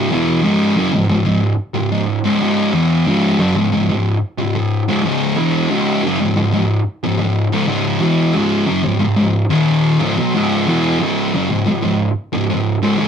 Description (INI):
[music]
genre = metal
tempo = 91 BPM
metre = 4/4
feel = straight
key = C# minor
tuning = A4 = 441 Hz
[part]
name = thick fuzz guitar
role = solo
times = 0.0-13.1 s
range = C#2 to F#3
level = -14 LUFS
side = equal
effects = distortion
[sound]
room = moderate studio ambience, RT60 0.5 s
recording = rough rehearsal-room recording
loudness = -14 LUFS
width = side -7 dB against mid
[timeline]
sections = 0.0-13.1 A section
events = none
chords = 0.0 C#m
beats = 0.43 1.09 1.75 | 2.41 3.07 3.73 4.39 | 5.05 5.71 6.37 7.03 | 7.70 8.36 9.02 9.68 | 10.34 11.00 11.66 12.32 | 12.98